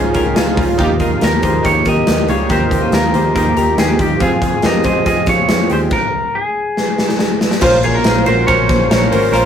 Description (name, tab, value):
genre	jangly indie pop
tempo	140 BPM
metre	4/4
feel	straight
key	unclear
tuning	A4 = 441 Hz
part	electric guitar through a small old amp	melody	0.0-9.5 s	G4 to Eb5	-18 LUFS	left 1 dB	none
part	picked steel-string acoustic guitar	accompaniment	0.0-9.5 s	Bb2 to C5	-23 LUFS	right 4 dB	none
part	warm analog keys	accompaniment	0.0-9.5 s	C4 to Bb5	-18 LUFS	right 1 dB	chorus
part	twelve-string electric guitar	arpeggios	0.0-9.5 s	Bb3 to Db5	-21 LUFS	left 3 dB	none
part	vintage muted picked electric bass	bass	0.0-9.5 s	Ab1 to F2	-20 LUFS	equal	none
part	big rock drum kit	drums	0.1-9.4 s	crash cymbal, hi-hat, kick drum, ride cymbal, snare drum	-17 LUFS	equal	none
room	moderate small room reverb, RT60 0.5 s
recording	rough rehearsal-room recording, warm saturation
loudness	-12 LUFS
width	side -8 dB against mid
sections	0.0-7.6 A section; 7.6-9.5 B section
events	synth keys fill 0.0-0.8; stop 5.9-7.6; drum fill 6.8-7.6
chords	0.0 Dbadd9; 4.2 Fm; 7.6 Bbmadd9